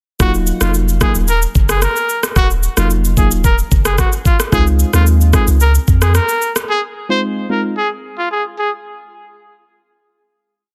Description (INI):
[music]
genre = afrobeats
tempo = 111 BPM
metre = 4/4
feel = straight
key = Db major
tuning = A4 = 440 Hz
[part]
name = clear trumpet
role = melody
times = 0.2-8.7 s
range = F4 to C5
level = -21 LUFS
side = equal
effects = tape echo
[part]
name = mellow FM electric piano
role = accompaniment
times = 0.2-7.7 s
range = Gb3 to F4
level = -22 LUFS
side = equal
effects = chorus
[part]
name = punchy sub bass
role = bass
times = 0.2-6.2 s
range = Eb1 to F2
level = -16 LUFS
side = equal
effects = none
[part]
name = afro-pop drum kit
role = drums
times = 0.2-6.7 s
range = kick drum, rim click, shaker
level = -18 LUFS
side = equal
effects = none
[sound]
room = little or no reverb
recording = dense, heavily limited modern master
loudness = -14 LUFS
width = mono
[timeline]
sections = 0.2-8.8 verse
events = none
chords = 0.2 Ebmadd9; 4.5 Dbmaj7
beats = | 0.20 0.74 1.28 1.82 | 2.36 2.90 3.44 3.98 | 4.52 5.06 5.61 6.15 | 6.69 7.23 7.77 8.31